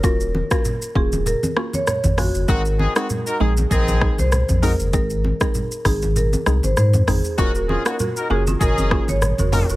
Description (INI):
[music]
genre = afrobeats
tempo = 98 BPM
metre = 4/4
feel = swing 55% on 16ths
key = Eb dorian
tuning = A4 = 438 Hz
[part]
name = marimba with medium mallets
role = melody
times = 0.0-9.7 s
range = Gb4 to Db5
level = -25 LUFS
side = right 1 dB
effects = none
[part]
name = mallet-like synth pluck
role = accompaniment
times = 0.0-9.8 s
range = Ab3 to Ab4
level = -27 LUFS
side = equal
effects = chorus, phaser
[part]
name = warm sub bass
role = bass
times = 0.0-9.8 s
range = Eb1 to Ab2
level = -20 LUFS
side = equal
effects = none
[part]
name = afro-pop drum kit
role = drums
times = 0.0-9.8 s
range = hi-hat, kick drum, rim click, shaker, toms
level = -22 LUFS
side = equal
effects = none
[part]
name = congas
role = percussion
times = 0.3-9.7 s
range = none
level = -26 LUFS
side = equal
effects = none
[part]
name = clear horn section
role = second line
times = 2.5-9.7 s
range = C4 to Bb4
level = -26 LUFS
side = left 1 dB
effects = tape echo
[part]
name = balafon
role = riff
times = 7.6-9.8 s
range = Eb4 to Bb4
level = -28 LUFS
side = right 4 dB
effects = tape echo
[sound]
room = small room ambience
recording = heavily compressed radio sound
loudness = -17 LUFS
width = side -17 dB against mid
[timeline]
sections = 0.0-9.8 A section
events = none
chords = 0.0 Ebm7; 2.5 Ab; 7.4 Ebm7